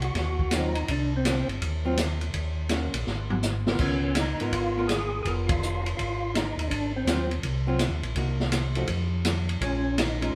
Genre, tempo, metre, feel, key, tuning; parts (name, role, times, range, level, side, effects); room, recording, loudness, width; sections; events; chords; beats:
soul jazz organ trio; 165 BPM; 4/4; swing 66% on 8ths; Ab mixolydian; A4 = 440 Hz
percussive tonewheel organ; melody; 0.0-1.5, 3.8-7.3, 9.6-10.3 s; C4 to Ab4; -33 LUFS; equal; slow rotary speaker, overdrive, chorus vibrato
mellow tonewheel organ; bass; 0.0-10.3 s; F1 to Ab2; -31 LUFS; equal; chorus vibrato, slow rotary speaker
open jazz drum kit; drums; 0.0-10.3 s; crash cymbal, hi-hat, kick drum, ride cymbal, snare drum, toms; -32 LUFS; equal
archtop guitar, miked and amplified; accompaniment; 0.5-10.3 s; Eb3 to Bb4; -34 LUFS; equal
wet stone room reverb, RT60 1.2 s; band playing live in one room; -27 LUFS; mono
0.0-10.4 A section
drum fill 3.1-3.8; band accent 5.4
0.0 Ab6 (rootless); 2.3 Ebm7; 3.1 Absus2; 3.8 Db13; 6.7 Ab13; 8.2 Cm7b5; 8.9 N.C.; 9.6 Bbm7
0.15 0.52 | 0.88 1.24 1.61 1.97 | 2.33 2.70 3.06 3.43 | 3.79 4.16 4.52 4.88 | 5.25 5.61 5.98 6.34 | 6.70 7.07 7.43 7.80 | 8.16 8.52 8.89 9.25 | 9.62 9.98